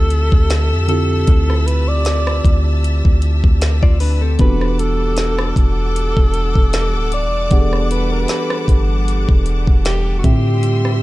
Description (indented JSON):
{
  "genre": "contemporary R&B",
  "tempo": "77 BPM",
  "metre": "4/4",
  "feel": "swing 54% on 16ths",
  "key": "E minor",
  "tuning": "A4 = 440 Hz",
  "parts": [
    { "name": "breathy alto saxophone", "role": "melody", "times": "0.0-11.0 s", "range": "F#4 to D5", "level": "-23 LUFS", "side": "equal", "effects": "digital delay" },
    { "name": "muted felt-like synth keys", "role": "accompaniment", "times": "0.0-11.0 s", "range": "D3 to F#5", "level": "-23 LUFS", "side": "right 1 dB", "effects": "chorus" },
    { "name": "clear studio string section", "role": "sustained chords", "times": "0.0-11.0 s", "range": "G3 to E6", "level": "-28 LUFS", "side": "left 2 dB", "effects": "sidechain pumping" },
    { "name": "soft 808-style bass", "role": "bass", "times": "0.0-11.0 s", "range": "D1 to A2", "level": "-17 LUFS", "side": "equal", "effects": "none" },
    { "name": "smooth R&B drum kit", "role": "drums", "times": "0.1-11.0 s", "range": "hi-hat, kick drum, rim click, snare drum", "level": "-15 LUFS", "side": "equal", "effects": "vintage 12-bit sampler grit" },
    { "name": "direct-recorded clean electric guitar", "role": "arpeggios", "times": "3.8-4.6 s", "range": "C4 to D5", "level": "-26 LUFS", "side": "left 7 dB", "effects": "none" }
  ],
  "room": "little or no reverb",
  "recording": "dark, warm production",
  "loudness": "-13 LUFS",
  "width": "side -18 dB against mid",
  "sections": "0.0-11.0 A section",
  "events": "none",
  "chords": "0.0 Dm11; 4.4 Em11; 10.2 Dm11",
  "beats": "0.50 | 1.28 2.06 2.84 3.62 | 4.40 5.17 5.95 6.73 | 7.51 8.29 9.07 9.85 | 10.63"
}